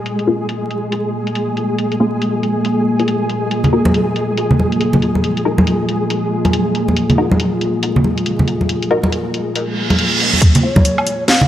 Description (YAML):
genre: deep dubstep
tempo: 139 BPM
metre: 4/4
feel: swing 61% on 16ths, half-time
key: unclear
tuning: A4 = 440 Hz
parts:
  - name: deep dark ambient pad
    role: sustained chords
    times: 0.0-11.5 s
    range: F3 to F4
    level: -20 LUFS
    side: left 1 dB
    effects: chorus, built-in reverb, vintage 12-bit sampler grit
  - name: downlifter, reverse cymbal and riser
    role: sound effects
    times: 0.0-0.1, 9.7-11.5 s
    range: none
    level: -19 LUFS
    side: right 3 dB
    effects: none
  - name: flickering grainy texture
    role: texture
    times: 0.0-10.4 s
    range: Ab3 to Ab4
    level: -21 LUFS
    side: equal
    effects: built-in reverb
  - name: garage drum kit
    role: drums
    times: 0.1-11.4 s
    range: hi-hat, snare drum, woodblock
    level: -19 LUFS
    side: left 1 dB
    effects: low-pass filter on snare, studio reverb, low-pass filter on hats, low-pass filter on perc
  - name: filtered dub chord stab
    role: stabs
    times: 0.3-10.7 s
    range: Bb3 to Bb4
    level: -21 LUFS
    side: left 2 dB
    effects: phaser, wide subtle chorus, dub echo
  - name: congas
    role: percussion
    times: 3.6-11.5 s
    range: none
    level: -16 LUFS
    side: right 1 dB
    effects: none
  - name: electronic kick drum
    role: drums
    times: 10.4-10.8 s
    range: none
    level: -10 LUFS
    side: equal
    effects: studio reverb
  - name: mellow hollow long shakuhachi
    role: melody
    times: 10.6-11.5 s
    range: Db5 to F5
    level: -19 LUFS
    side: equal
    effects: low-pass filter
room: moderate lush hall reverb, RT60 2.1 s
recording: vinyl crackle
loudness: -14 LUFS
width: side -12 dB against mid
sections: 0.0-10.4 A section; 10.4-11.5 B section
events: filter sweep on synth stab 0.0-10.4; filter sweep on ambient pad 0.0-10.4, 10.4-11.5; reverse cymbal 9.7-10.4; build-up 10.4-11.5; riser 10.4-11.5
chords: 0.0 Bbm; 3.5 Ebm; 10.4 Bbm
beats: | 0.06 0.49 0.92 1.35 | 1.78 2.21 2.65 3.08 | 3.51 3.94 4.37 4.80 | 5.24 5.67 6.10 6.53 | 6.96 7.39 7.83 8.26 | 8.69 9.12 9.55 9.98 | 10.42 10.85 11.28